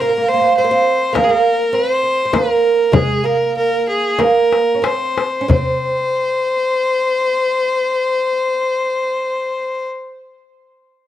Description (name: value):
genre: Arabic maqam ensemble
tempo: 90-106 BPM (eighths)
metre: 10/8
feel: straight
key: unclear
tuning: A4 = 440 Hz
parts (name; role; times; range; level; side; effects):
- clear violin; melody; 0.0-9.9 s; Ab4 to C5; -16 LUFS; equal; slapback echo
- oud; second line; 0.0-9.9 s; Ab3 to Db4; -19 LUFS; right 5 dB; slapback echo
- darbuka; percussion; 0.0-6.1 s; none; -21 LUFS; left 4 dB; none
- frame drum; percussion; 1.2-6.1 s; none; -18 LUFS; left 2 dB; none
room: small room reverb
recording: dry, close 1970s-style studio recording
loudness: -14 LUFS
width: side -12 dB against mid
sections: 0.0-5.5 A section; 5.5-11.1 B section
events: slowing down 0.0-5.5; drum fill 4.2-5.5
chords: none